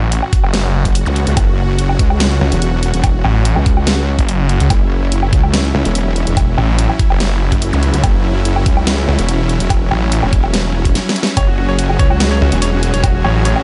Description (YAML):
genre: heavy wobble dubstep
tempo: 144 BPM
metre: 4/4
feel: half-time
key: F# minor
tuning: A4 = 440 Hz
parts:
  - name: supersaw chords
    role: sustained chords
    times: 0.0-13.6 s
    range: F#3 to G#4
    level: -24 LUFS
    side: equal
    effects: sidechain pumping
  - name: snarling distorted saw bass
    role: bass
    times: 0.0-13.5 s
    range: F#1 to C#2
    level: -16 LUFS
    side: equal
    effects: distortion, overdrive
  - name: dubstep drum kit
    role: drums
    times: 0.1-13.6 s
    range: hi-hat, snare drum, woodblock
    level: -22 LUFS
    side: equal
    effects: studio ambience
  - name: electronic kick drum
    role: drums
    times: 0.3-13.1 s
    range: none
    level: -16 LUFS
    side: equal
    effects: studio ambience
  - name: wobble bass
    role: bass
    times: 0.9-13.2 s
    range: E1 to C#2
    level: -18 LUFS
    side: equal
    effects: chorus, overdrive
  - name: zap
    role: sound effects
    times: 1.1-1.2, 7.7-7.8 s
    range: none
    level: -30 LUFS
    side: equal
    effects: none
  - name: bright grand piano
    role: melody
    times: 11.4-13.6 s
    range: F#4 to C#5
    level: -24 LUFS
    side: equal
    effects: none
room: little or no reverb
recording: nothing above 10.6 kHz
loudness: -14 LUFS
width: mono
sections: 0.0-13.6 A section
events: drum fill 11.0-11.4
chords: 0.0 F#5